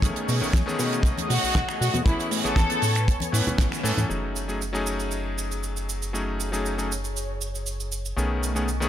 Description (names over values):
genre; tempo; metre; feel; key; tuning
nu-disco, nu disco; 118 BPM; 4/4; straight; F# dorian; A4 = 441 Hz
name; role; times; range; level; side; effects
bright electric grand piano; accompaniment; 0.0-8.9 s; D#3 to B4; -30 LUFS; left 2 dB; sidechain pumping, digital delay
lush unison pad; sustained chords; 0.0-8.9 s; A3 to C#6; -34 LUFS; equal; chorus, sidechain pumping
chorused synth bass; bass; 0.0-8.9 s; F#1 to B2; -28 LUFS; equal; none
damped 70s drum kit; drums; 0.0-8.9 s; cabasa, finger snaps, hi-hat, snare drum; -31 LUFS; right 4 dB; studio reverb
kick drum; drums; 0.0-3.7 s; none; -22 LUFS; equal; studio reverb
congas; percussion; 0.5-4.1 s; none; -34 LUFS; left 2 dB; none
dark studio violin section; melody; 1.3-3.2 s; E4 to A4; -29 LUFS; left 2 dB; ping-pong delay
room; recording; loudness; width
light reverb; none; -23 LUFS; side -11 dB against mid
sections
0.0-4.1 A section; 4.1-8.9 B section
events
band accent 3.6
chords
0.0 B13; 2.1 Amaj9; 4.1 F#m69; 8.2 B13